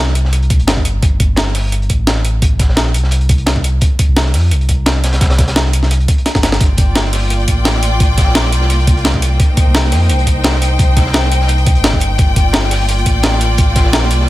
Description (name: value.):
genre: liquid drum and bass.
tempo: 172 BPM.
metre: 4/4.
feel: straight.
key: G minor.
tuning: A4 = 439 Hz.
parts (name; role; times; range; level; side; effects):
sub bass with octave; bass; 0.0-14.3 s; G1 to F2; -14 LUFS; equal; none.
crunchy breakbeat drum kit; drums; 0.1-14.3 s; hi-hat, snare drum; -24 LUFS; equal; high-pass filter on hats, high-pass filter on snare, high-pass filter on room.
breakbeat sampler-style drum kit; drums; 0.2-14.2 s; hi-hat, snare drum; -17 LUFS; equal; none.
electronic kick drum; drums; 0.5-13.8 s; none; -13 LUFS; equal; none.
clear studio string section; sustained chords; 6.6-14.3 s; Bb3 to G5; -18 LUFS; left 2 dB; none.
room: small room ambience.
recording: none.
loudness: -10 LUFS.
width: side -16 dB against mid.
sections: 0.0-14.3 A section.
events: drum fill 6.3-6.6.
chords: 0.0 C5; 1.0 Gm; 3.8 C5; 6.6 Gm7; 9.4 Cm7; 12.2 Gm7.